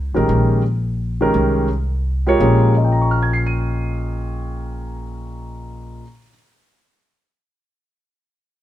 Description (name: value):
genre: modal jazz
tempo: 170 BPM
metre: 3/4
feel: swing 63% on 8ths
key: Bb dorian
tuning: A4 = 441 Hz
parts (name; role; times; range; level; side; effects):
- upright bass; bass; 0.0-6.0 s; A1 to Db2; -20 LUFS; left 1 dB; none
- dark grand piano; accompaniment; 0.1-6.3 s; Bb2 to Eb7; -19 LUFS; right 1 dB; none
room: light reverb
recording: band playing live in one room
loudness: -16 LUFS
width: side -13 dB against mid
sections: 0.0-2.4 A section; 2.4-4.5 B section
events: none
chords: 0.3 Fmadd9/Bb (rootless)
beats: | 0.28 0.64 0.99 | 1.35 1.70 2.05 | 2.41 2.76 3.12 | 3.47 3.82 4.18